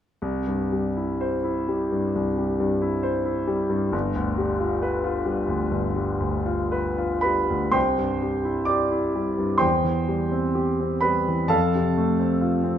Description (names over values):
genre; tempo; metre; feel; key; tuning
classical, romantic nocturne for solo piano; 64 BPM; 4/4; uneven beats, rubato; C major; A4 = 440 Hz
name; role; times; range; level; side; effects
clear concert grand piano; solo; 0.2-12.8 s; G1 to D6; -21 LUFS; equal; none
room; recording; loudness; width
wet large studio reverb, RT60 1.3 s; none; -21 LUFS; side -9 dB against mid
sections
0.2-7.8 A section; 7.8-12.8 B section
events
none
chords
0.2 C; 3.9 G7; 7.8 C; 9.6 C/E; 11.5 F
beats
| 0.22 1.21 2.15 3.04 | 3.93 4.82 5.72 6.71 | 7.75 8.69 9.62 10.57 | 11.52 12.41